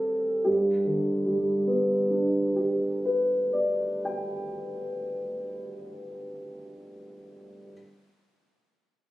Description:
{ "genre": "neoclassical minimalist piano", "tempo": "72 BPM", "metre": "3/4", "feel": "rubato", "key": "G major", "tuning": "A4 = 444 Hz", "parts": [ { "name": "dark upright piano", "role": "solo", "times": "0.0-7.7 s", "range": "G2 to G5", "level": "-26 LUFS", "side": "equal", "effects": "none" } ], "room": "moderate studio reverb, RT60 0.6 s", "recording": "recorded on a phone in the room, studio reverb, compression", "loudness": "-24 LUFS", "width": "side -16 dB against mid", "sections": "0.5-5.4 A section", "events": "none", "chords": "0.5 G" }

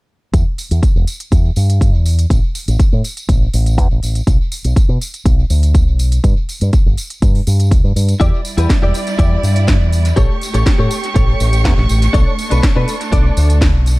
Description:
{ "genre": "nu-disco, nu disco", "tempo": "122 BPM", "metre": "4/4", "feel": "straight", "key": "E dorian", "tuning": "A4 = 441 Hz", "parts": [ { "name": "fingered electric bass with an envelope filter", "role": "bass", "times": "0.3-14.0 s", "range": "E1 to B2", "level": "-13 LUFS", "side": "equal", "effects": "none" }, { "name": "electronic kick drum", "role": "drums", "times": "0.3-13.7 s", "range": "none", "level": "-13 LUFS", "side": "equal", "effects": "small room ambience" }, { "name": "house drum kit", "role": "drums", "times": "0.3-14.0 s", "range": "hi-hat, snare drum", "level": "-26 LUFS", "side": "right 1 dB", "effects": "small room ambience, dub echo" }, { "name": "tambourine", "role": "percussion", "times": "0.4-14.0 s", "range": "none", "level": "-31 LUFS", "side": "right 1 dB", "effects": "dub echo" }, { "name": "rich chamber string section", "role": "sustained chords", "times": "8.2-14.0 s", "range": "G3 to C#6", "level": "-22 LUFS", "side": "right 2 dB", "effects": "sidechain pumping" }, { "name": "direct-recorded clean electric guitar", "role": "riff", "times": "8.2-13.6 s", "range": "D4 to D5", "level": "-23 LUFS", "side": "left 2 dB", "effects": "ensemble chorus, dub echo" } ], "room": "little or no reverb", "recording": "echo-heavy mix", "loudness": "-12 LUFS", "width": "side -22 dB against mid", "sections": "0.3-14.0 A section", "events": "filter sweep on fingered electric bass 0.3-14.0", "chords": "0.3 Em; 2.3 A5; 4.3 Bm; 6.2 G5; 8.2 Em7; 10.2 A7; 12.1 Bm9" }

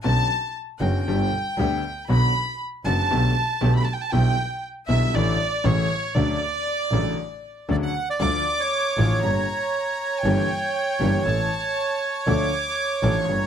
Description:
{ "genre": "tango", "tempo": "118 BPM", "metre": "4/4", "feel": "rubato", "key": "D major, D harmonic minor from 8.2 s", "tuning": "A4 = 440 Hz", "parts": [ { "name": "warm chamber violin section", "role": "second line", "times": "0.0-13.5 s", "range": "C#5 to D6", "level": "-26 LUFS", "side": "equal", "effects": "none" }, { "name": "bright grand piano", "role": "accompaniment", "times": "0.0-13.5 s", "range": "F#1 to A4", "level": "-26 LUFS", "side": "left 3 dB", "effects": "none" }, { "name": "clear double bass", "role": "bass", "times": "0.0-13.5 s", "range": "F#1 to D2", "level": "-23 LUFS", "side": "right 1 dB", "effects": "none" }, { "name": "bandoneon", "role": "melody", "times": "7.7-13.5 s", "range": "C#5 to F#5", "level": "-24 LUFS", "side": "right 3 dB", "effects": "none" } ], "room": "light reverb", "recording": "close, detailed microphones", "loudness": "-20 LUFS", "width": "side -8 dB against mid", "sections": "0.0-8.2 A section; 8.2-13.5 B section", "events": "violin section solo 0.0-8.2", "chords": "0.0 Bmadd9; 1.1 G; 2.1 Bm; 3.1 Gadd9/B; 4.1 Em7/B; 5.1 Asus4; 5.7 A; 6.2 Dmaj7; 8.2 Dm; 9.2 Gm; 10.2 Edim/G; 11.3 A; 12.3 Dm" }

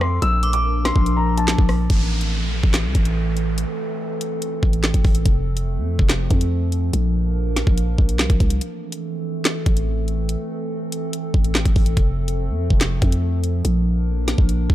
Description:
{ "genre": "hip hop, drill", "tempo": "143 BPM", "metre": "4/4", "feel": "half-time", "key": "A phrygian", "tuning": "A4 = 440 Hz", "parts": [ { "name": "dark baby grand piano", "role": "melody", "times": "0.0-1.9 s", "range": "A5 to E6", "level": "-24 LUFS", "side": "left 2 dB", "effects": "digital delay" }, { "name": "warbly tape-like pad", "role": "sustained chords", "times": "0.0-14.7 s", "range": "E3 to Bb4", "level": "-27 LUFS", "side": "right 1 dB", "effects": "chorus, built-in reverb" }, { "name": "growling 808-style bass", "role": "bass", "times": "0.0-14.7 s", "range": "F1 to F2", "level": "-20 LUFS", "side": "equal", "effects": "none" }, { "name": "drill drum kit", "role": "drums", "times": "0.0-14.7 s", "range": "handclaps, hi-hat, kick drum, rim click, snare drum", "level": "-18 LUFS", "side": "equal", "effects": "overdrive" }, { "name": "metallic FM bell", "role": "second line", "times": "0.4-1.4 s", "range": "D6", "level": "-32 LUFS", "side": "right 3 dB", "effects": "chorus, digital delay" }, { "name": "downlifter", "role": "sound effects", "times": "1.9-5.3 s", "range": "none", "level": "-32 LUFS", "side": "equal", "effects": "none" } ], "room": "digital ambience", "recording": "dark, warm production", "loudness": "-18 LUFS", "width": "side -14 dB against mid", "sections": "0.0-1.9 A section; 1.9-14.7 B section", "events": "break 8.6-9.5", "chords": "0.2 Bb; 1.9 Am; 5.3 F; 6.9 Bb; 8.6 Am; 12.0 F; 13.6 Bb" }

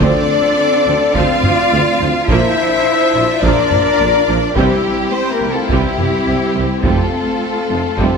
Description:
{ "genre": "cinematic, epic orchestral film score", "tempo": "105 BPM", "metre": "4/4", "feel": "straight", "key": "D minor", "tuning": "A4 = 438 Hz", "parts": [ { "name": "rich symphonic violin section", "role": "melody", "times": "0.0-8.2 s", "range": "G4 to F5", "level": "-21 LUFS", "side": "left 2 dB", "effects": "none" }, { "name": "large flute ensemble", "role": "second line", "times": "0.0-8.2 s", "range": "E4 to D5", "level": "-21 LUFS", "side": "equal", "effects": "none" }, { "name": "warm symphonic violin section", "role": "second line", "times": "0.0-8.2 s", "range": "C4 to F4", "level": "-22 LUFS", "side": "left 4 dB", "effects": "none" }, { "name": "clear symphonic viola section", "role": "accompaniment", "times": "0.0-8.2 s", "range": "C3 to Bb3", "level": "-24 LUFS", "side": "right 2 dB", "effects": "none" }, { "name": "mellow French horn section", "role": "sustained chords", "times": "0.0-8.2 s", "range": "G4 to F5", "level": "-18 LUFS", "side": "left 7 dB", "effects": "none" }, { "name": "warm trombone section", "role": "sustained chords", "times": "0.0-8.2 s", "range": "E3 to C4", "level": "-29 LUFS", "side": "right 4 dB", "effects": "none" }, { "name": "mellow tuba", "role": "bass", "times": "0.0-8.1 s", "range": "F1 to D2", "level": "-23 LUFS", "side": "right 6 dB", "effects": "none" }, { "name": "rich studio double bass section", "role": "bass", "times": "0.0-8.1 s", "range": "Bb1 to F2", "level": "-23 LUFS", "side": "right 4 dB", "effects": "none" }, { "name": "warm studio cello section", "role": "bass", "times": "0.0-8.2 s", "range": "G3 to F4", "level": "-21 LUFS", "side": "right 3 dB", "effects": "none" }, { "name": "taiko ensemble", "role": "drums", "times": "0.0-8.2 s", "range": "none", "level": "-21 LUFS", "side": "equal", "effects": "none" }, { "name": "timpani", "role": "percussion", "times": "0.0-0.8 s", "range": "D3", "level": "-24 LUFS", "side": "right 1 dB", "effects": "none" }, { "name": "reverse cymbal", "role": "sound effects", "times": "8.2 s", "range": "none", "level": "barely audible", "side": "none", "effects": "none" } ], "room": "wet concert hall reverb, RT60 2.3 s", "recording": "none", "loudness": "-12 LUFS", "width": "side -5 dB against mid", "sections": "0.0-8.2 A section", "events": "none", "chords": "0.0 Dm7; 2.3 Bb; 4.6 C; 6.8 Fadd9" }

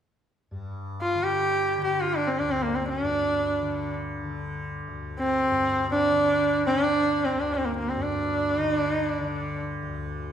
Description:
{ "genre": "indian classical, Hindustani", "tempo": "free time", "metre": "none", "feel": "none", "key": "unclear", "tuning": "A4 = 440 Hz", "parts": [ { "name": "tanpura", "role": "drone", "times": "0.5-10.3 s", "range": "D2 to D3", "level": "-33 LUFS", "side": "left 2 dB", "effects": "none" }, { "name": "clear sarangi", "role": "melody", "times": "1.0-9.6 s", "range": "Bb3 to G4", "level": "-24 LUFS", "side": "right 1 dB", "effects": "none" } ], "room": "wet large studio reverb, RT60 1.2 s", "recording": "band playing live in one room", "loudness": "-23 LUFS", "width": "side -9 dB against mid", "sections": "0.5-10.3 A section", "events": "none", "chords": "none" }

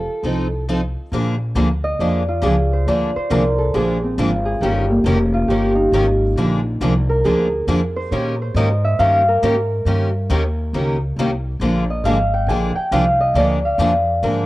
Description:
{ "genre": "acoustic string swing (jazz manouche)", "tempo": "137 BPM", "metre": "4/4", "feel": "swing 65% on 8ths", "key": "Bb mixolydian", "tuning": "A4 = 435 Hz", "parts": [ { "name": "picked steel-string acoustic guitar", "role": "melody", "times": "0.0-0.6 s", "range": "A4", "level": "-28 LUFS", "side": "right 2 dB", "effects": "cassette tape" }, { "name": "Celtic harp", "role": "second line", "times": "0.0-14.5 s", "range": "Bb3 to Ab5", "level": "-19 LUFS", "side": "equal", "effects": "cassette tape" }, { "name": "upright bass", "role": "bass", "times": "0.0-14.5 s", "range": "F1 to Bb2", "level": "-20 LUFS", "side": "equal", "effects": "none" }, { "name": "picked steel-string acoustic guitar", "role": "accompaniment", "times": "0.2-14.5 s", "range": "D3 to Bb4", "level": "-24 LUFS", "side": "left 3 dB", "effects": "cassette tape" }, { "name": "picked steel-string acoustic guitar", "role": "accompaniment", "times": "0.3-14.5 s", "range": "D3 to Bb4", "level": "-23 LUFS", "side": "right 3 dB", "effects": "cassette tape" } ], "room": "light reverb", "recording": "home recording on cassette", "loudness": "-16 LUFS", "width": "side -18 dB against mid", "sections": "0.0-1.1 A section; 1.1-14.5 B section", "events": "harp solo 1.1-14.5", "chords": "0.0 F7; 1.1 Bb7; 4.6 Eb7; 6.4 Bb7; 8.1 Eb7; 11.6 Bb7" }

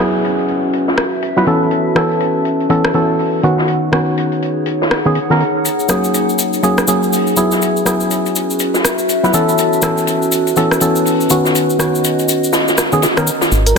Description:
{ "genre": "deep house", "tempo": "122 BPM", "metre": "4/4", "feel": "swing 60% on 16ths", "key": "unclear", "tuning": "A4 = 439 Hz", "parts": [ { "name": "percussive organ stab", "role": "stabs", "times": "0.0-13.8 s", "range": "D#3 to B4", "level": "-15 LUFS", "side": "equal", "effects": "chorus, tape echo" }, { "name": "downlifter", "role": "sound effects", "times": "0.0-1.7 s", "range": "none", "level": "-30 LUFS", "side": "equal", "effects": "none" }, { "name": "warbly tape-like pad", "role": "texture", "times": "0.0-13.8 s", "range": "C#4 to F#5", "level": "-19 LUFS", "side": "equal", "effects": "chorus, built-in reverb" }, { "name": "swinging big-band drum kit", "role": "drums", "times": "0.2-13.5 s", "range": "hi-hat, snare drum", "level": "-22 LUFS", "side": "left 1 dB", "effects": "high-pass filter on hats, low-pass filter on hats, high-pass filter on snare, low-pass filter on snare, high-pass filter on room, low-pass filter on room" }, { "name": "deep house drum kit", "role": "drums", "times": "1.0-13.7 s", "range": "hi-hat, rim click", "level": "-21 LUFS", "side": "left 1 dB", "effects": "soft clipping on snare" }, { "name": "tube shaker", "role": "percussion", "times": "5.7-13.7 s", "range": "none", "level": "-21 LUFS", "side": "left 3 dB", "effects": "none" }, { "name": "woody FM bass", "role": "bass", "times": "13.5-13.7 s", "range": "G#1", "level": "-13 LUFS", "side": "equal", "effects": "none" }, { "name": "bell-like FM electric piano", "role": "melody", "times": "13.7-13.8 s", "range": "A#4", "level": "-15 LUFS", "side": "right 3 dB", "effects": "chorus, tremolo, vintage 12-bit sampler grit" } ], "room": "wet lush hall reverb, RT60 2.1 s", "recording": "dense, heavily limited modern master", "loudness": "-12 LUFS", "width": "side -5 dB against mid", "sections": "0.0-13.5 A section", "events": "none", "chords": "0.0 F#9sus4; 1.7 B9sus4; 3.4 C#9sus4; 5.6 G#9sus4; 7.4 F#9sus4; 9.6 B9sus4; 11.3 C#9sus4" }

